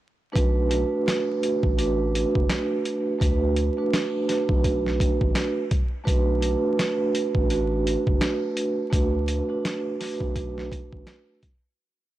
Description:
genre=hip hop, boom-bap hip-hop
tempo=84 BPM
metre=4/4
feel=swing 59% on 16ths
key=B minor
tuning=A4 = 440 Hz
part: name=vibraphone with soft mallets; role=accompaniment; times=0.3-11.3 s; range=A3 to B4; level=-24 LUFS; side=right 2 dB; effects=cassette tape, high-pass filter, low-pass filter
part: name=saturated sub bass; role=bass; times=0.4-11.1 s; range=F#1 to D2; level=-27 LUFS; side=equal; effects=tube saturation
part: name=boom bap sampler-style drum kit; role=drums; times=0.4-11.6 s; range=hi-hat, kick drum, snare drum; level=-25 LUFS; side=equal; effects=none
room=digital ambience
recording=blown-out, overdriven recording, vinyl crackle, overdrive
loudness=-22 LUFS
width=side -14 dB against mid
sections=0.4-11.8 verse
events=fade-out 8.9-11.8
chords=0.4 Bm7; 3.2 D6; 6.1 Bm7; 8.9 D6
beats=| 0.35 1.07 1.78 2.50 | 3.21 3.93 4.64 5.36 | 6.07 6.78 7.50 8.21 | 8.93 9.64 10.36 11.07

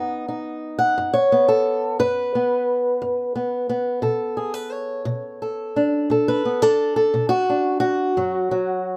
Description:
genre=acoustic country blues, solo or duo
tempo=58 BPM (dotted quarters)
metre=12/8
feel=straight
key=unclear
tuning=A4 = 440 Hz
part: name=fingerpicked old ladder-braced acoustic guitar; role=solo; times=0.0-9.0 s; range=F#2 to F#5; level=-22 LUFS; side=equal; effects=none
room=light reverb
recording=none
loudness=-21 LUFS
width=mono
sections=0.0-9.0 A section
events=steel-string acoustic guitar solo 0.0-9.0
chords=0.0 B; 4.0 Bm7; 8.2 N.C.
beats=0.96 1.99 3.02 | 4.04 5.07 6.10 7.12 | 8.15

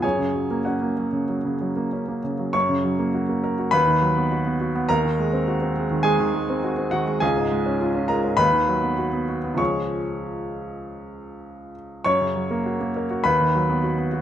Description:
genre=classical, virtuoso piano study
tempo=94-105 BPM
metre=4/4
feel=rubato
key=F# major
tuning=A4 = 440 Hz
part: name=clear baby grand piano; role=solo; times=0.0-14.2 s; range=C#2 to C#6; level=-20 LUFS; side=equal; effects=none
room=moderate stone room reverb, RT60 1.2 s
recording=none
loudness=-20 LUFS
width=side -10 dB against mid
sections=0.0-2.5 A section; 2.5-14.2 A section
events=none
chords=0.0 F#; 3.7 B/D#; 4.9 G#7/D#; 7.2 C#; 8.4 B/D#; 9.6 C#; 12.1 F#; 13.2 B/D#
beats=| 0.03 0.66 1.28 1.92 | 2.54 3.14 3.73 4.32 | 4.90 5.48 6.05 6.64 | 7.22 7.80 8.39 8.98 | 9.59 10.21 10.83 11.44 | 12.06 12.66 13.25 13.84

